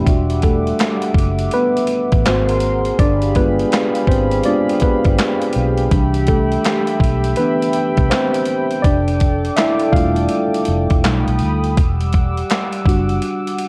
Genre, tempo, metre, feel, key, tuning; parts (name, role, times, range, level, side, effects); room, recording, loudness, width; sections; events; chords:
lo-fi hip hop; 82 BPM; 4/4; swing 61% on 16ths; E phrygian; A4 = 438 Hz
mellow tine electric piano; accompaniment; 0.0-13.7 s; E3 to F5; -20 LUFS; equal; low-pass filter
warm analog pad; sustained chords; 0.0-13.7 s; G3 to E6; -25 LUFS; equal; chorus, low-pass filter
vintage muted fingered electric bass; bass; 0.0-13.2 s; E1 to D2; -21 LUFS; equal
dusty soul sampler-style drum kit; drums; 0.1-13.7 s; handclaps, hi-hat, kick drum, snare drum; -21 LUFS; equal
light reverb, digital ambience; worn, warbling old tape, cassette tape, warbly pitch drift; -16 LUFS; mono
0.1-13.7 A section
tine electric piano solo 0.1-13.7
0.1 Em9; 2.3 G#9; 3.0 G7b9; 5.9 Cmaj7; 8.8 F6; 11.0 B7alt; 11.8 Em9